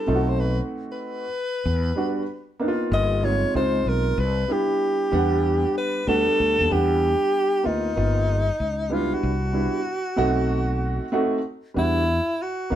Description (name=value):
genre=hip hop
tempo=95 BPM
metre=4/4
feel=swing 66% on 16ths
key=E minor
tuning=A4 = 444 Hz
part: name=warm alto saxophone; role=melody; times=0.0-12.8 s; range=D#4 to D#5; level=-24 LUFS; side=equal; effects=none
part: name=dark concert grand piano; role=accompaniment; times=0.0-12.8 s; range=C3 to F#5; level=-25 LUFS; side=right 2 dB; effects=none
part: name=fretless electric bass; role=bass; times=0.1-12.8 s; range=G1 to E2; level=-24 LUFS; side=equal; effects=none
room=light reverb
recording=band playing live in one room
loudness=-20 LUFS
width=side -11 dB against mid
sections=0.0-6.7 A section; 6.7-12.8 B section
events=alto saxophone solo 0.0-6.7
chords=0.1 B7b9; 1.6 Em9; 2.9 G7alt; 3.5 C#maj7; 4.2 Cmaj7; 5.1 Em9; 8.0 G7alt; 8.6 C#m9b5; 9.2 Cmaj7; 10.2 B7b9; 11.8 Em9